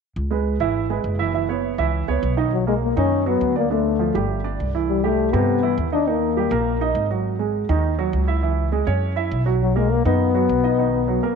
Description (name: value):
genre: jazz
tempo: 203 BPM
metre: 4/4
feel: straight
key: B major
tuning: A4 = 441 Hz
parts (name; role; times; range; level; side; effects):
- upright bass; bass; 0.2-11.2 s; F#1 to G2; -23 LUFS; equal; none
- warm baby grand piano; accompaniment; 0.3-11.4 s; C3 to E5; -23 LUFS; right 10 dB; none
- dark trombone; melody; 2.5-7.0, 9.6-11.4 s; F#3 to D4; -21 LUFS; left 10 dB; none
room: moderate echo chamber reverb, RT60 2.4 s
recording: 1960s-style stereo with parts hard left and right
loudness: -18 LUFS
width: side -6 dB against mid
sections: 0.2-2.5 A section; 2.5-11.4 B section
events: break 10.8-11.4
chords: 0.2 C#m7; 1.3 F#7sus4; 2.5 Bmaj9; 3.7 Dm; 4.3 G5; 4.9 Cmaj7; 6.1 D#; 7.3 G#5; 8.4 C#m; 9.0 F#5; 9.6 Bmaj7